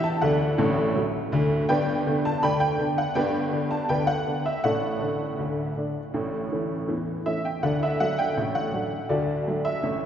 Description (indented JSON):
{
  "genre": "ragtime piano",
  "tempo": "81 BPM",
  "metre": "2/4",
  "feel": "straight",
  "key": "D major",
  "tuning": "A4 = 440 Hz",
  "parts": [
    { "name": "honky-tonk upright piano", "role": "solo", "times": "0.0-10.1 s", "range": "G1 to B5", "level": "-23 LUFS", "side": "equal", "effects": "none" }
  ],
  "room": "wet cathedral reverb, RT60 4.5 s",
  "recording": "recorded in a church or concert hall, nothing above 7.7 kHz",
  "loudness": "-23 LUFS",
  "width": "side -9 dB against mid",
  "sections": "0.0-10.1 A section",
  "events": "none",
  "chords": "0.2 D; 1.7 G; 4.6 D/A; 6.1 A; 7.6 D"
}